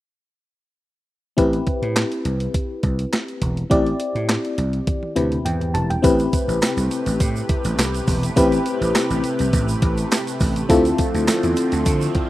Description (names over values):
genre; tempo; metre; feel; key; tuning
early-eighties boogie funk; 103 BPM; 4/4; straight; A minor; A4 = 440 Hz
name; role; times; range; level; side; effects
FM electric piano with auto-pan; accompaniment; 1.4-12.3 s; C4 to A5; -21 LUFS; left 2 dB; none
vintage slap bass; bass; 1.4-12.1 s; E1 to D3; -23 LUFS; equal; none
clean 12-bit digital drum machine; drums; 1.4-12.3 s; handclaps, hi-hat, kick drum, snare drum, toms; -22 LUFS; right 1 dB; none
lush unison pad; sustained chords; 6.0-12.3 s; C3 to B4; -27 LUFS; right 1 dB; chorus, phaser
tube shaker; percussion; 6.0-12.1 s; none; -34 LUFS; right 7 dB; none
room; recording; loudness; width
digital ambience; rough home demo mix; -18 LUFS; side -16 dB against mid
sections
1.4-6.0 A section; 6.0-12.3 B section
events
drum fill 4.9-6.0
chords
1.4 Am7; 6.0 Am9; 10.7 Dm7